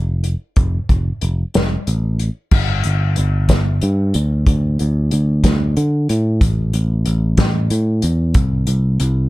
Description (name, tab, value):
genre	folk rock and heartland rock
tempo	62 BPM (dotted quarters)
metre	6/8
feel	straight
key	unclear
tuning	A4 = 440 Hz
part	picked electric bass	bass	0.0-9.3 s	F1 to D3	-16 LUFS	equal	none
part	unplugged drum kit	drums	0.2-9.2 s	crash cymbal, hi-hat, kick drum, snare drum	-18 LUFS	equal	none
room	little or no reverb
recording	dark, warm production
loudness	-15 LUFS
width	side -18 dB against mid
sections	0.0-2.5 A section; 2.5-9.3 B section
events	none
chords	none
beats	| 0.57 1.55 | 2.52 3.49 | 4.46 5.44 | 6.41 7.38 | 8.35